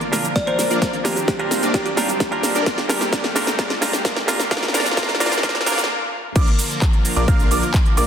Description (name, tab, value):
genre	EDM, festival progressive house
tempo	130 BPM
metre	4/4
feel	straight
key	Bb major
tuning	A4 = 440 Hz
part	lush unison pad	sustained chords	0.0-8.1 s	C3 to Bb4	-28 LUFS	left 1 dB	chorus, sidechain pumping
part	supersaw chords	riff	0.0-8.1 s	Bb3 to F5	-25 LUFS	equal	analog chorus, sidechain pumping, low-pass filter, dub echo
part	big-room dance drum kit	drums	0.0-8.1 s	crash cymbal, handclaps, hi-hat, ride cymbal, rim click, shaker, snare drum	-22 LUFS	equal	none
part	riser	sound effects	0.0-5.9 s	none	-32 LUFS	left 1 dB	none
part	direct-recorded clean electric guitar	accompaniment	0.1-5.8 s	Bb2 to Bb4	-25 LUFS	right 2 dB	sidechain pumping, dub echo
part	kalimba	melody	0.4-1.9 s	G4 to D5	-24 LUFS	equal	dub echo
part	electronic kick drum	drums	0.4-7.8 s	none	-19 LUFS	equal	overdrive
part	wide detuned saw bass	bass	0.7-8.1 s	F1 to C2	-28 LUFS	equal	none
part	dark grand piano	arpeggios	6.4-8.1 s	D6 to F6	-26 LUFS	right 4 dB	sidechain pumping, dub echo
room	moderate scoring stage reverb, RT60 1.9 s, digital ambience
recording	dense, heavily limited modern master, high-pass filter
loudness	-17 LUFS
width	side -8 dB against mid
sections	0.0-6.4 A section; 6.4-8.1 B section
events	build-up 0.0-6.4; drum fill 0.0-5.9; filter sweep 0.0-6.4; riser 0.0-5.9; stop 5.9-6.4; drop 6.4-8.1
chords	0.0 Bb; 0.8 Cmadd9; 2.7 Gmadd9; 4.5 Fsus4; 6.4 Bb